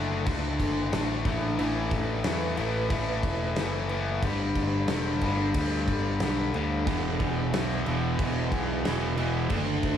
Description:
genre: hard rock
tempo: 91 BPM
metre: 4/4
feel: straight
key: unclear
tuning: A4 = 444 Hz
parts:
  - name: evolving wavetable pad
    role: sustained chords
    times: 0.0-10.0 s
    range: E3 to B4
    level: -36 LUFS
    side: right 2 dB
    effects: ensemble chorus, built-in reverb
  - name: cranked stack guitar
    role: riff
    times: 0.0-10.0 s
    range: E2 to D4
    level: -29 LUFS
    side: left 4 dB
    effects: overdrive
  - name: modern bright picked electric bass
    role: bass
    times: 0.0-10.0 s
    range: E1 to E2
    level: -31 LUFS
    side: equal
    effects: none
  - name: gated 80s drum kit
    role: drums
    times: 0.3-10.0 s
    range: crash cymbal, kick drum, snare drum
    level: -31 LUFS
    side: equal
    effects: none
  - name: sludgy distorted guitar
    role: riff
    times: 6.9-10.0 s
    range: E2 to D4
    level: -31 LUFS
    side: right 11 dB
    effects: overdrive
room: light reverb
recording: none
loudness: -25 LUFS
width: side -9 dB against mid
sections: 0.0-10.0 A section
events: none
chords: 0.0 D; 1.3 A5; 4.2 G5; 6.9 E5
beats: 0.26 0.92 | 1.58 2.25 2.91 3.57 | 4.23 4.89 5.55 6.22 | 6.88 7.54 8.20 8.86 | 9.52

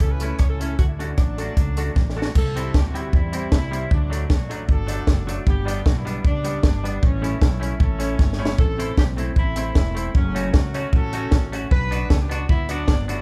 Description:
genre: ska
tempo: 154 BPM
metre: 4/4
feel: straight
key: D major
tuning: A4 = 441 Hz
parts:
  - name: warm horn section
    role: melody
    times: 0.0-13.2 s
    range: E3 to C#5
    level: -33 LUFS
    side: equal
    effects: none
  - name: upright bass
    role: bass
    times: 0.0-13.2 s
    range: E1 to E2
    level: -28 LUFS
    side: equal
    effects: none
  - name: compact cocktail drum kit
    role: drums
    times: 0.0-13.2 s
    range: crash cymbal, hi-hat, kick drum, rim click, snare drum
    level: -22 LUFS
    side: equal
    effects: none
  - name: semi-hollow electric guitar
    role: accompaniment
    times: 0.2-13.2 s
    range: F#3 to F#4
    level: -35 LUFS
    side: equal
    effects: dub echo
  - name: dark upright piano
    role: stabs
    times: 0.2-13.2 s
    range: A3 to D5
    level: -36 LUFS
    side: equal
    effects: none
room: light reverb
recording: band playing live in one room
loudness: -21 LUFS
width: mono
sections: 0.0-2.3 A section; 2.3-13.2 B section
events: drum fill 2.0-2.3, 8.2-8.6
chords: 0.0 A; 0.8 D; 2.3 C; 3.9 D; 5.5 G; 7.0 A; 8.6 Am; 10.1 F#m; 11.7 Bm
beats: 0.01 0.40 | 0.79 1.18 1.57 1.96 | 2.35 2.74 3.13 3.52 | 3.91 4.30 4.69 5.08 | 5.47 5.86 6.25 6.64 | 7.03 7.42 7.81 8.20 | 8.59 8.98 9.37 9.76 | 10.15 10.54 10.93 11.32 | 11.71 12.10 12.49 12.88

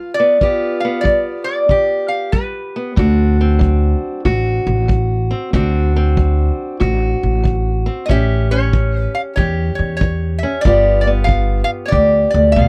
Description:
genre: acoustic country blues, solo or duo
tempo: 94 BPM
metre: 4/4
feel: swing 66% on 8ths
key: D mixolydian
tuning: A4 = 440 Hz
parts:
  - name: lap resonator guitar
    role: melody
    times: 0.0-4.2, 8.1-12.7 s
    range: B4 to F5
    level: -18 LUFS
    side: equal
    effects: none
  - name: fingerpicked steel-string acoustic guitar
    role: accompaniment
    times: 0.0-12.7 s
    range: G2 to G4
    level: -23 LUFS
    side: equal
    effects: none
  - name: kick drum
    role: drums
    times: 0.4-12.7 s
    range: none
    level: -20 LUFS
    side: equal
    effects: none
  - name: upright bass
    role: bass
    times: 3.0-12.7 s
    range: G1 to E2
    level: -18 LUFS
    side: equal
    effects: none
room: light reverb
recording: dry, close 1970s-style studio recording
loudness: -16 LUFS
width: mono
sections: 0.0-12.7 A section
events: none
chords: 0.0 G7; 3.0 D7; 8.1 A7; 10.6 G7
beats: | 0.41 1.05 1.69 2.33 | 2.96 3.60 4.24 4.88 | 5.52 6.16 6.80 7.44 | 8.08 8.72 9.36 10.00 | 10.64 11.28 11.92 12.55

